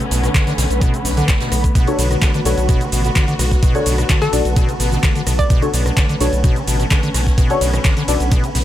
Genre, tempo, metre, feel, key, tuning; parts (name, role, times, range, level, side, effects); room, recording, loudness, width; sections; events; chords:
acid house; 128 BPM; 4/4; straight; B minor; A4 = 440 Hz
dark symphonic string section; sustained chords; 0.0-8.6 s; D3 to F#4; -26 LUFS; equal; sidechain pumping
acid bass, square; riff; 0.0-8.6 s; B1 to D3; -22 LUFS; equal; tube saturation, wide subtle chorus
booming analog drum machine; drums; 0.0-8.6 s; handclaps, hi-hat, ride cymbal, rim click, shaker; -24 LUFS; equal; overdrive
granular cloud pad; texture; 0.0-8.6 s; D3 to B5; -26 LUFS; left 1 dB; built-in reverb, sidechain pumping
round analog bass; bass; 0.1-8.6 s; A1 to B1; -19 LUFS; equal; sidechain pumping
open jazz drum kit; drums; 0.1-8.6 s; hi-hat, snare drum; -32 LUFS; right 3 dB
electronic kick drum; drums; 0.3-8.4 s; -16 LUFS; equal
deep mellow chord stab; stabs; 1.9-8.2 s; D4 to D5; -22 LUFS; left 3 dB; chorus, cassette tape, digital delay
hollow square pluck; melody; 4.2-5.7 s; A4 to D5; -24 LUFS; left 1 dB; chorus, cassette tape, ping-pong delay
little or no reverb; -14 LUFS; side -13 dB against mid
0.0-8.6 A section
0.0 Bm7